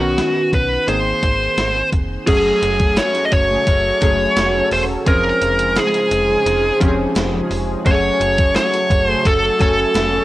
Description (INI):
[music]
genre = 1980s-style pop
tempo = 86 BPM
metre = 4/4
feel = straight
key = unclear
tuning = A4 = 441 Hz
[part]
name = bluesy overdriven lead guitar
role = melody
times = 0.0-10.2 s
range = Gb4 to Eb5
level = -16 LUFS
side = equal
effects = distortion, shimmer reverb
[part]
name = chorused retro synth keys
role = accompaniment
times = 0.0-10.2 s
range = Eb3 to Ab5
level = -23 LUFS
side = left 1 dB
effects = cassette tape, shimmer reverb
[part]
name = slap-like FM bass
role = bass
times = 0.0-10.2 s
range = Fb1 to Cb2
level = -24 LUFS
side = equal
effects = none
[part]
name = gated 80s digital drum machine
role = drums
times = 0.2-10.1 s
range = crash cymbal, hi-hat, kick drum, snare drum, tambourine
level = -19 LUFS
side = equal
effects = gated reverb, gated reverb snare, cassette tape
[part]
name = overdriven semi-hollow guitar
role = accompaniment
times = 2.3-10.2 s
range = Db3 to Gb4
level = -30 LUFS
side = right 1 dB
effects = none
[part]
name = warm French horn section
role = sustained chords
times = 2.3-10.2 s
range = Db3 to C5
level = -27 LUFS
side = equal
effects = cassette tape, shimmer reverb
[part]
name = group handclap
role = percussion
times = 3.0-10.1 s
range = none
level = -37 LUFS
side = right 3 dB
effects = none
[part]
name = mellow synth brass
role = stabs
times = 3.5-10.2 s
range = Db3 to Db5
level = -29 LUFS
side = right 1 dB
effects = chorus, cassette tape, shimmer reverb
[sound]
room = light reverb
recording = home recording on cassette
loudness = -14 LUFS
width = side -16 dB against mid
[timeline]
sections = 0.0-2.3 A section; 2.3-10.2 B section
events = none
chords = 0.0 Cbadd9; 0.9 Abadd9; 2.3 Gbmadd9; 5.1 Dbmaj7/F; 7.9 Gbmadd9